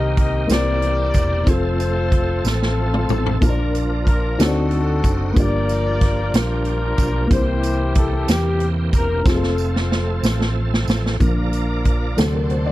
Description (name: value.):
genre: slow gospel.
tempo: 62 BPM (dotted quarters).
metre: 6/8.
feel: straight.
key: Bb major.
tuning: A4 = 440 Hz.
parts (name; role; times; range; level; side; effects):
warm horn section; melody; 0.0-10.6 s; C4 to Eb5; -24 LUFS; left 3 dB; none.
dark upright piano; accompaniment; 0.0-12.7 s; G2 to A5; -25 LUFS; left 2 dB; none.
bright tonewheel organ; sustained chords; 0.0-12.7 s; D3 to Bb4; -28 LUFS; right 4 dB; slow rotary speaker, overdrive, chorus vibrato.
hollow-body short-scale fingered electric bass; bass; 0.0-12.7 s; E1 to E2; -21 LUFS; equal; none.
swinging big-band drum kit; drums; 0.2-12.7 s; hi-hat, kick drum, snare drum, toms; -20 LUFS; equal; none.
tambourine; percussion; 0.5-12.5 s; none; -36 LUFS; right 8 dB; none.
warm studio string section; sustained chords; 11.2-12.7 s; D5 to D6; -33 LUFS; equal; none.
room: little or no reverb.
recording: dry, close 1970s-style studio recording.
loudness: -16 LUFS.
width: side -16 dB against mid.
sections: 0.0-11.2 A section; 11.2-12.7 B section.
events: drum fill 2.4-3.4, 9.3-11.2; upright piano solo 11.2-12.7.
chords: 0.5 C7; 1.5 F; 3.4 Bbmaj7; 4.4 D7b9; 5.4 Gm7; 7.3 C7; 9.3 F; 11.2 Bb; 12.2 D7.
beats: 0.50 | 1.47 2.44 | 3.41 4.39 | 5.36 6.33 | 7.31 8.28 | 9.26 10.23 | 11.21 12.18.